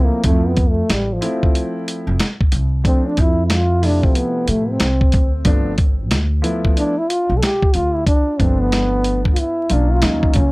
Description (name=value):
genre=hip hop, jazz-hop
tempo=92 BPM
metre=4/4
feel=swing 62% on 16ths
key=unclear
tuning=A4 = 442 Hz
part: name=dark trombone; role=melody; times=0.0-10.5 s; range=F3 to A4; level=-20 LUFS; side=equal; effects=analog delay
part: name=dark grand piano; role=accompaniment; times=0.0-10.4 s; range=C3 to F4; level=-23 LUFS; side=equal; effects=none
part: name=upright bass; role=bass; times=0.0-10.5 s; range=F1 to A2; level=-19 LUFS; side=equal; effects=none
part: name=dusty soul sampler-style drum kit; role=drums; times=0.2-10.5 s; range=hi-hat, kick drum, snare drum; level=-16 LUFS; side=equal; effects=none
room=light reverb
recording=vinyl crackle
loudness=-14 LUFS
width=side -23 dB against mid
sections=0.0-10.5 A section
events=trombone solo 0.0-10.5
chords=0.2 Dm7 (rootless); 5.5 G9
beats=| 0.24 0.90 1.55 2.20 | 2.85 3.50 4.16 4.81 | 5.46 6.11 6.76 7.42 | 8.07 8.72 9.37 10.03